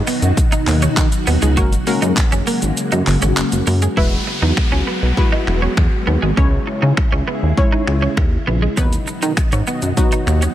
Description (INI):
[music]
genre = dance-pop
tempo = 100 BPM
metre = 4/4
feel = straight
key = B major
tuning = A4 = 440 Hz
[part]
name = punchy chord stab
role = accompaniment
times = 0.0-10.5 s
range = F#3 to C#5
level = -23 LUFS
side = left 2 dB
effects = chorus, sidechain pumping
[part]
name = soft string machine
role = sustained chords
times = 0.0-10.5 s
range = B2 to G#4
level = -22 LUFS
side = left 1 dB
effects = phaser, ensemble chorus, sidechain pumping
[part]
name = twelve-string electric guitar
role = riff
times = 0.0-10.5 s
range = G#3 to F#4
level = -24 LUFS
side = right 4 dB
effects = wide subtle chorus
[part]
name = chorused synth bass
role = bass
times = 0.0-10.5 s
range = E1 to D#3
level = -17 LUFS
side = equal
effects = sidechain pumping
[part]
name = pop drum kit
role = drums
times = 0.1-10.5 s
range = finger snaps, handclaps, hi-hat, kick drum, shaker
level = -18 LUFS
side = equal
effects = none
[part]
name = downlifter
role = sound effects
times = 4.0-8.8 s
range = none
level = -28 LUFS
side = equal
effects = none
[sound]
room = digital ambience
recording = none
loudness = -14 LUFS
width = side -12 dB against mid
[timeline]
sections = 0.0-4.0 A section; 4.0-10.5 B section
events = kick muted 2.8-4.0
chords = 0.0 B; 1.6 F#add9; 4.0 Eadd9; 6.4 C#m; 8.8 B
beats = 0.37 0.97 | 1.57 2.17 2.77 3.37 | 3.97 4.57 5.17 5.77 | 6.37 6.97 7.57 8.17 | 8.77 9.37 9.97